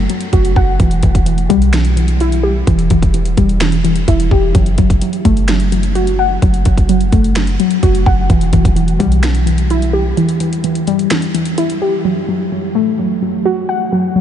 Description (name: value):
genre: hip hop, trap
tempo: 128 BPM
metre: 4/4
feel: half-time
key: F# phrygian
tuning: A4 = 441 Hz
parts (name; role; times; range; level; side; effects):
- warbly dusty pluck; accompaniment; 0.0-14.2 s; E3 to F#5; -14 LUFS; left 1 dB; chorus, low-pass filter
- clean 808-style bass; bass; 0.0-10.1 s; E1 to B1; -14 LUFS; equal; none
- trap drum kit; drums; 0.1-11.8 s; finger snaps, hi-hat, kick drum, snare drum; -17 LUFS; equal; vintage 12-bit sampler grit
room: moderate huge ambient reverb, RT60 8.8 s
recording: dreamy mix soaked in reverb, nothing above 10.4 kHz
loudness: -11 LUFS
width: side -10 dB against mid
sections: 0.0-12.0 A section; 12.0-14.2 B section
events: break 10.2-12.0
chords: 0.0 F#m; 0.8 Em; 4.5 F#m; 8.3 Em; 12.0 F#m